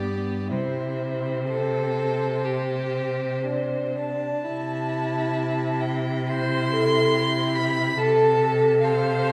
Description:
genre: classical, slow romantic movement for string quartet.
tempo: 56-72 BPM.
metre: 4/4.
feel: rubato.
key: C major.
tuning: A4 = 440 Hz.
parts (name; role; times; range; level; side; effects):
warm violin; melody; 0.0-9.3 s; C5 to C6; -31 LUFS; equal; none.
rich violin; second line; 0.0-9.3 s; D4 to A4; -29 LUFS; equal; none.
rich viola; accompaniment; 0.0-9.3 s; B3 to C5; -29 LUFS; equal; none.
bright cello; bass; 0.0-9.3 s; G2 to C3; -30 LUFS; equal; none.
room: wet stone room reverb, RT60 1.3 s.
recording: heard from further back in the room.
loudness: -24 LUFS.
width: mono.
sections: 0.0-4.5 A section; 4.5-9.3 B section.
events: none.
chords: 0.0 G; 0.5 C; 8.0 F/C.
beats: | 0.52 1.50 2.47 3.47 | 4.48 5.36 6.28 7.15 | 8.00 8.84.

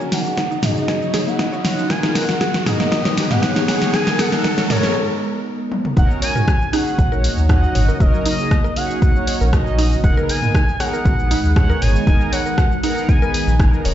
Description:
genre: afro house.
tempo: 118 BPM.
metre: 4/4.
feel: straight.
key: Eb minor.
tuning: A4 = 439 Hz.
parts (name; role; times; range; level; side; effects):
expressive portamento lead; melody; 0.0-13.8 s; Db5 to Ab5; -24 LUFS; equal; chorus, tape echo.
ethereal airy pad; sustained chords; 0.0-13.9 s; Db3 to Bb5; -26 LUFS; equal; ensemble chorus, built-in reverb, phaser, sidechain pumping.
mallet-like synth pluck; arpeggios; 0.0-13.9 s; Bb3 to Db5; -28 LUFS; right 1 dB; chorus, sidechain pumping, tape echo.
mellow synth brass; stabs; 0.0-13.9 s; Cb4 to Eb5; -25 LUFS; right 1 dB; chorus, sidechain pumping, tape echo.
deep house drum kit; drums; 0.0-13.9 s; cabasa, hi-hat, rim click, snare drum, toms; -22 LUFS; equal; none.
riser; sound effects; 0.0-5.0 s; none; -25 LUFS; equal; none.
electronic kick drum; drums; 0.4-13.7 s; none; -16 LUFS; equal; high-pass filter on kick.
warm sub bass; bass; 1.3-13.9 s; Eb1 to Eb2; -17 LUFS; equal; sidechain pumping, high-pass filter.
room: moderate recital hall reverb, RT60 1.4 s.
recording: played on a big sound system in a bare room, large studio reverb, nothing above 7.7 kHz.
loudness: -15 LUFS.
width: side -11 dB against mid.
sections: 0.0-6.0 A section; 6.0-13.9 B section.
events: build-up 0.0-6.0; drum fill 0.0-5.0, 5.7; riser 0.0-5.0; filter sweep on analog polysynth 0.0-6.0; filter sweep on analog synth lead 0.0-6.0; break 5.0-6.0; drop 6.0-13.9.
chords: 0.0 Ebm7; 1.9 Abmadd9/Eb; 6.0 Ebm7; 10.0 Abmadd9/Eb.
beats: 0.38 0.89 1.39 | 1.90 2.41 2.92 3.43 | 3.94 4.44 4.95 5.46 | 5.97 6.48 6.99 7.50 | 8.00 8.51 9.02 9.53 | 10.04 10.55 11.05 11.56 | 12.07 12.58 13.09 13.60.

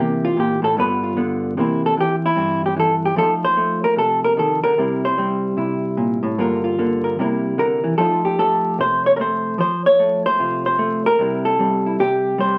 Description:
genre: solo jazz.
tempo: 150 BPM.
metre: 4/4.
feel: swing 64% on 8ths.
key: C mixolydian.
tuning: A4 = 440 Hz.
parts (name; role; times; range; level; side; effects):
hollow-body jazz guitar; solo; 0.0-12.6 s; G2 to Db5; -19 LUFS; equal; none.
room: wet small room reverb, RT60 0.5 s.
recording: very old 78 rpm record, vinyl crackle.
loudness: -19 LUFS.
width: mono.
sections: 0.0-1.6 A section; 1.6-12.6 B section.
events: hollow-body jazz guitar solo 0.0-1.6.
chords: 0.0 C7; 0.8 G7; 1.6 C7; 3.2 F7; 4.8 C7; 6.4 Gm7; 7.2 C7; 8.0 F7; 11.2 C.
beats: 0.37 0.77 1.17 | 1.57 1.97 2.37 2.77 | 3.17 3.57 3.97 4.37 | 4.77 5.17 5.57 5.97 | 6.37 6.77 7.17 7.58 | 7.98 8.38 8.78 9.18 | 9.58 9.98 10.38 10.78 | 11.19 11.59 11.99 12.39.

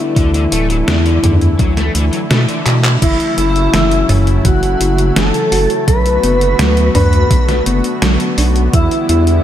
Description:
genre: synthwave.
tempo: 84 BPM.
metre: 4/4.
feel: straight.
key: F# minor.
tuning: A4 = 440 Hz.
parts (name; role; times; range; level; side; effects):
expressive portamento lead; melody; 0.0-9.4 s; E4 to B4; -18 LUFS; equal; chorus, vintage 12-bit sampler grit, digital delay, slapback echo.
warm analog pad; sustained chords; 0.0-9.4 s; C#3 to F#4; -20 LUFS; left 1 dB; chorus, sidechain pumping.
crunchy overdriven guitar; riff; 0.2-2.8 s; D3 to D4; -23 LUFS; left 2 dB; ensemble chorus, tape echo, slapback echo.
round analog bass; bass; 0.2-9.4 s; D1 to B2; -15 LUFS; equal; sidechain pumping.
detuned 8-bit digital drum machine; drums; 0.2-9.4 s; crash cymbal, handclaps, hi-hat, snare drum, toms; -17 LUFS; equal; overdrive.
electronic kick drum; drums; 0.2-8.9 s; none; -14 LUFS; equal; overdrive.
airy dreamy lead; second line; 3.0-9.4 s; E4 to B4; -20 LUFS; left 1 dB; chorus, phaser, cassette tape, tape echo, slapback echo.
thumb-piano-like synth pluck; arpeggios; 3.0-9.3 s; E3 to F#4; -21 LUFS; right 2 dB; chorus, tape echo, slapback echo.
room: light reverb.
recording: none.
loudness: -10 LUFS.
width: side -11 dB against mid.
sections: 0.0-3.0 A section; 3.0-9.4 B section.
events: drum fill 2.7-3.0.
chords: 0.2 Dsus2; 3.0 F#m7; 5.9 Bm7; 8.7 Em7.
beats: | 0.16 0.88 1.59 2.31 | 3.02 3.74 4.45 5.16 | 5.88 6.59 7.31 8.02 | 8.74.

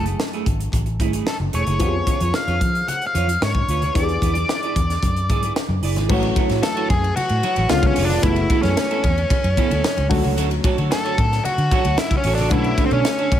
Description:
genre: polished 1980s jazz-funk pop.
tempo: 112 BPM.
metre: 4/4.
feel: straight.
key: F# minor.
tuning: A4 = 440 Hz.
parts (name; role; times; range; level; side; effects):
octave-fuzz lead guitar; melody; 0.0-13.4 s; B#3 to F#5; -23 LUFS; left 1 dB; distortion.
warm baby grand piano; accompaniment; 0.0-13.4 s; D3 to G#5; -26 LUFS; left 3 dB; wide subtle chorus.
clean electric guitar; riff; 0.0-13.4 s; A3 to D5; -27 LUFS; right 9 dB; analog chorus.
vintage muted fingered electric bass; bass; 0.0-13.4 s; E1 to E#3; -22 LUFS; equal; none.
crisp fusion drum kit; drums; 0.1-13.4 s; crash cymbal, hi-hat, kick drum, ride cymbal, snare drum; -22 LUFS; equal; none.
congas; percussion; 0.1-13.4 s; none; -33 LUFS; left 3 dB; none.
room: light reverb, small room ambience.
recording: none.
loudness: -17 LUFS.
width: side -10 dB against mid.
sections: 0.0-6.1 A section; 6.1-13.4 B section.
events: none.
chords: 0.0 F#m9; 1.8 C#7/E#; 3.9 E7; 6.1 A6; 7.7 C#7b9; 8.2 F#m11; 10.1 Dmaj7; 12.5 Bm9.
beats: 0.19 0.73 1.27 | 1.80 2.34 2.88 3.41 | 3.95 4.49 5.02 5.56 | 6.09 6.63 7.17 7.70 | 8.24 8.77 9.31 9.84 | 10.38 10.91 11.45 11.98 | 12.52 13.05.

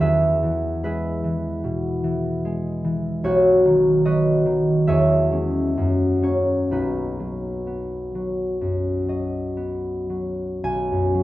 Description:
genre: classical, solo harp piece.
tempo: 53-76 BPM.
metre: 4/4.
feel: rubato.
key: B major.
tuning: A4 = 439 Hz.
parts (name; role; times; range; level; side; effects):
concert harp; solo; 0.0-11.2 s; B1 to G#5; -19 LUFS; equal; none.
room: light reverb.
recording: dark, warm production.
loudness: -19 LUFS.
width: side -15 dB against mid.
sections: 0.0-10.6 A section.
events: none.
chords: 0.0 E; 3.3 B; 4.9 C#m/E; 5.8 F#; 6.7 B.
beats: | 0.00 0.82 1.62 2.45 | 3.26 4.06 4.90 5.79 | 6.73 7.68 8.61 9.56 | 10.64.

